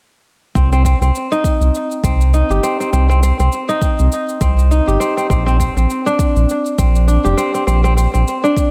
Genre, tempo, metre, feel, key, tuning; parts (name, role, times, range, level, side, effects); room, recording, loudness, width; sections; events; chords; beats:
organic downtempo; 101 BPM; 4/4; swing 57% on 16ths; C minor; A4 = 440 Hz
kora; arpeggios; 0.6-8.7 s; C4 to G4; -20 LUFS; equal; tape echo
round analog bass; bass; 0.6-8.2 s; F1 to C2; -15 LUFS; equal; sidechain pumping
electronic kick drum; drums; 0.6-8.7 s; -19 LUFS; equal; studio reverb
shaker; drums; 0.6-8.7 s; -35 LUFS; equal; studio reverb, tape echo
light reverb; echo-heavy mix; -15 LUFS; mono
0.6-8.7 A section
0.6 Cm; 5.3 Bb6
| 0.55 1.15 1.74 2.33 | 2.93 3.52 4.12 4.71 | 5.30 5.90 6.49 7.09 | 7.68 8.28